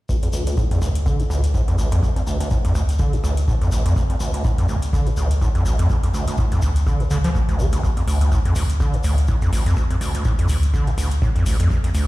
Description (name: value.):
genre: acid house.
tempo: 124 BPM.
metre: 4/4.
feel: swing 56% on 16ths.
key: D minor.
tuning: A4 = 436 Hz.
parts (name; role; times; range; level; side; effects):
overdriven acid bass; riff; 0.1-12.1 s; D2 to F3; -21 LUFS; equal; vintage 12-bit sampler grit, digital delay.
electronic kick drum; drums; 0.1-11.8 s; none; -21 LUFS; equal; none.
tube shaker; percussion; 0.1-12.1 s; none; -37 LUFS; left 3 dB; none.
electronic hi-hat; drums; 0.2-12.1 s; none; -38 LUFS; left 2 dB; overdrive.
warm sub bass; bass; 0.3-12.1 s; A1 to D2; -21 LUFS; equal; sidechain pumping.
room: light reverb, digital ambience.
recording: played on a big sound system in a bare room, large studio reverb.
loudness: -17 LUFS.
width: side -18 dB against mid.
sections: 0.1-12.1 A section.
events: filter sweep on acid bass 0.1-12.1.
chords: 0.1 D5.